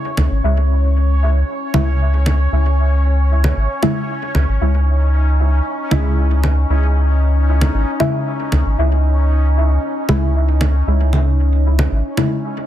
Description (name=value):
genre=dub techno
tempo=115 BPM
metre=4/4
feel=straight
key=C# minor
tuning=A4 = 440 Hz
part: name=bubbling stepped-filter texture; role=texture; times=0.0-12.7 s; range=C#4 to C#5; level=-23 LUFS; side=equal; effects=chorus, built-in reverb
part: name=soft dub sub bass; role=bass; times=0.2-12.0 s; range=G#1 to C#2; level=-14 LUFS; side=equal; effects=tube saturation
part: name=congas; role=percussion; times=0.2-12.3 s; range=none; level=-22 LUFS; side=right 1 dB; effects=dub echo
part: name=deep mellow chord stab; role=stabs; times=1.7-12.4 s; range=C#3 to E4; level=-22 LUFS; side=equal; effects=chorus, phaser, cassette tape, dub echo
room=little or no reverb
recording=dense, heavily limited modern master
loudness=-14 LUFS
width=side -12 dB against mid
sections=0.0-12.7 A section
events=none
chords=0.0 C#m